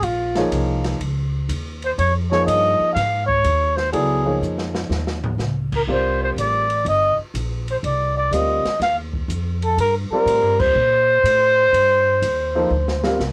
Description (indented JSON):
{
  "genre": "modal jazz",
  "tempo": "123 BPM",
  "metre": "4/4",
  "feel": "swing 67% on 8ths",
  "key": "unclear",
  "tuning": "A4 = 440 Hz",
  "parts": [
    { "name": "breathy trumpet", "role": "melody", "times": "0.0-13.2 s", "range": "F4 to F5", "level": "-20 LUFS", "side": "equal", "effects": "cassette tape" },
    { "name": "upright bass", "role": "bass", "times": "0.0-13.3 s", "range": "G1 to Bb2", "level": "-26 LUFS", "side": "equal", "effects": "none" },
    { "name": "open jazz drum kit", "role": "drums", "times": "0.0-13.3 s", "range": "crash cymbal, hi-hat, kick drum, ride cymbal, snare drum, toms", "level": "-32 LUFS", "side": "equal", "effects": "none" },
    { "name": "warm grand piano", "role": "accompaniment", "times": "0.4-13.2 s", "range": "F3 to F5", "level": "-26 LUFS", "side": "equal", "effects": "none" }
  ],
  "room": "moderate booth ambience, RT60 0.2 s",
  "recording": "home recording on cassette",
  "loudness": "-19 LUFS",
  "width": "mono",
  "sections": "0.0-13.3 A section",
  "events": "drum fill 4.4-5.4, 12.7-13.2; band accent 10.5",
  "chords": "0.0 Bbm7; 5.9 Cm9",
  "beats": "| 0.02 0.51 1.00 1.49 | 1.98 2.46 2.95 3.44 | 3.93 4.42 4.91 5.39 | 5.88 6.37 6.86 7.35 | 7.83 8.32 8.81 9.30 | 9.79 10.27 10.76 11.25 | 11.73 12.22 12.71 13.20"
}